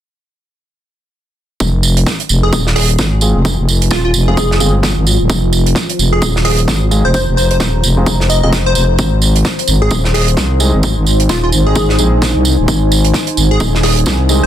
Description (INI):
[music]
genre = bass house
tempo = 130 BPM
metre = 4/4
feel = swing 60% on 16ths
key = F minor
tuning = A4 = 441 Hz
[part]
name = growling FM bass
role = bass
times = 1.6-14.5 s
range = Eb1 to C2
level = -12 LUFS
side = equal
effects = overdrive, sidechain pumping
[part]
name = electronic kick drum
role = drums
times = 1.6-14.2 s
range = none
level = -18 LUFS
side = equal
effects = high-pass filter on kick, high-pass filter on room
[part]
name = warm soul drum kit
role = drums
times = 1.6-14.4 s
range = hi-hat, snare drum, tambourine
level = -18 LUFS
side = right 5 dB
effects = sidechain pumping on hats, high-pass filter on hats, high-pass filter on snare, sidechain pumping on perc, high-pass filter on perc, high-pass filter on room
[part]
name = deep dark ambient pad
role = texture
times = 3.2-14.5 s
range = Eb4 to Bb5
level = -20 LUFS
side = equal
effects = chorus, built-in reverb, sidechain pumping
[part]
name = plucky unison lead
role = melody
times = 2.4-14.5 s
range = F4 to Eb5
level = -19 LUFS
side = equal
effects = ping-pong delay
[part]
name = warm concert grand piano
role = stabs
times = 3.2-14.4 s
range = Ab3 to Ab4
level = -21 LUFS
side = equal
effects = sidechain pumping, low-pass filter, ping-pong delay
[sound]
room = studio reverb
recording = dense, heavily limited modern master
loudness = -10 LUFS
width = side -11 dB against mid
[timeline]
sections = 1.6-14.5 A section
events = filter sweep on grand piano 1.6-14.5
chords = 1.6 Fm; 9.0 Ab